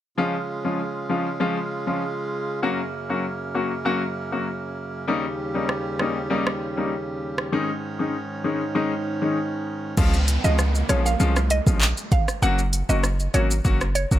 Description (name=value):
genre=dancehall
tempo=98 BPM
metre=4/4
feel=straight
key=Db major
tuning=A4 = 440 Hz
part: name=clear baby grand piano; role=accompaniment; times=0.2-14.2 s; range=Eb3 to Gb4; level=-25 LUFS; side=left 3 dB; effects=sidechain pumping
part: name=hand-pumped harmonium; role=sustained chords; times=0.2-10.0 s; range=Eb2 to F4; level=-28 LUFS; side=right 2 dB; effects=sidechain pumping
part: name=afro-pop drum kit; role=drums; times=5.7-14.2 s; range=crash cymbal, handclaps, hi-hat, kick drum, rim click, shaker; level=-23 LUFS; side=equal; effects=none
part: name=hard-hitting 808-style bass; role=bass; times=10.0-14.2 s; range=F1 to Db2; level=-22 LUFS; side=equal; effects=none
part: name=downlifter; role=sound effects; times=10.0-14.2 s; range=none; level=-34 LUFS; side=right 2 dB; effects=none
part: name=mallet-like synth pluck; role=melody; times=10.4-14.1 s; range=Db5 to Gb5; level=-27 LUFS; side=right 3 dB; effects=chorus, tape echo
room=light reverb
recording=none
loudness=-21 LUFS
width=side -13 dB against mid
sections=0.2-10.0 A section; 10.0-14.2 B section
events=none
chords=0.2 Db; 2.6 Gb; 5.1 Eb7; 7.5 Absus4; 10.0 Db; 12.4 Gb